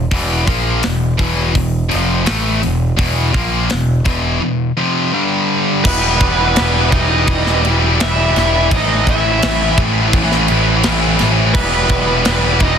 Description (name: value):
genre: heavy metal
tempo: 84 BPM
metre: 4/4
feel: straight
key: E harmonic minor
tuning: A4 = 437 Hz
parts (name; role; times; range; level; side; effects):
- high-gain distorted guitar; riff; 0.0-12.8 s; E2 to A#3; -16 LUFS; left 1 dB; distortion
- growling picked electric bass; bass; 0.0-12.8 s; E1 to A#1; -18 LUFS; equal; overdrive
- tight metal drum kit; drums; 0.1-12.8 s; crash cymbal, hi-hat, kick drum, snare drum; -18 LUFS; equal; soft clipping on kick
- high-gain lead guitar; melody; 5.8-12.8 s; B4 to E5; -20 LUFS; equal; distortion
- high-gain lead guitar; second line; 5.8-12.8 s; B3 to E4; -22 LUFS; right 4 dB; distortion
- pipe organ, trumpet; sustained chords; 5.9-12.8 s; E3 to C5; -27 LUFS; right 1 dB; none
room: small room ambience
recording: dense, heavily limited modern master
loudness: -12 LUFS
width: side -8 dB against mid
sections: 0.0-5.9 A section; 5.9-12.8 B section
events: none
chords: 0.0 E5; 5.1 G5; 5.9 Em; 8.7 Am; 11.5 Em